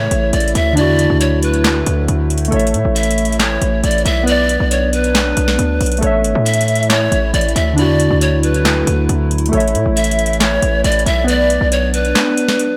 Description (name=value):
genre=hip hop, trap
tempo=137 BPM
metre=4/4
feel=half-time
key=A major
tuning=A4 = 441 Hz
part: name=breathy bright pan flute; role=second line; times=0.0-12.8 s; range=B4 to E5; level=-21 LUFS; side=equal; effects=tape echo
part: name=warbly lo-fi synth keys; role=accompaniment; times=0.0-12.8 s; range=D3 to E5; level=-20 LUFS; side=equal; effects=chorus, low-pass filter
part: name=warbly tape-like pad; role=sustained chords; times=0.0-12.8 s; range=C#3 to E4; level=-27 LUFS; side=equal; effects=chorus, built-in reverb, phaser
part: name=hard-hitting 808-style bass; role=bass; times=0.0-12.1 s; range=G#1 to A2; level=-20 LUFS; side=equal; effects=none
part: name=booming analog drum machine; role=drums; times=0.1-12.7 s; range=handclaps, hi-hat, snare drum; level=-22 LUFS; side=equal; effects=overdrive
room=light reverb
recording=none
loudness=-15 LUFS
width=mono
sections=0.0-12.8 A section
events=kick muted 12.2-12.8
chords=0.0 A; 0.8 Dadd9; 2.5 A; 4.3 Bm; 6.0 A; 7.8 Dadd9; 9.5 A; 11.3 Bm